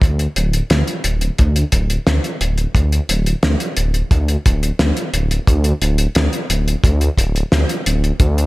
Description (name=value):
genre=synthwave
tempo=88 BPM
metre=4/4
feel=straight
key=unclear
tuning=A4 = 440 Hz
part: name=dark detuned saw bass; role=bass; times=0.0-8.5 s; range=D1 to D2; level=-16 LUFS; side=equal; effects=tube saturation
part: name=cloth-damped thuddy drum kit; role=drums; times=0.0-8.5 s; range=hi-hat, snare drum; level=-20 LUFS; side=equal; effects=gated reverb
part: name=kick drum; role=drums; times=0.0-8.3 s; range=none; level=-14 LUFS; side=equal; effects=none
room=little or no reverb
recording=none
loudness=-14 LUFS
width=side -20 dB against mid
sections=0.0-8.5 A section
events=none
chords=none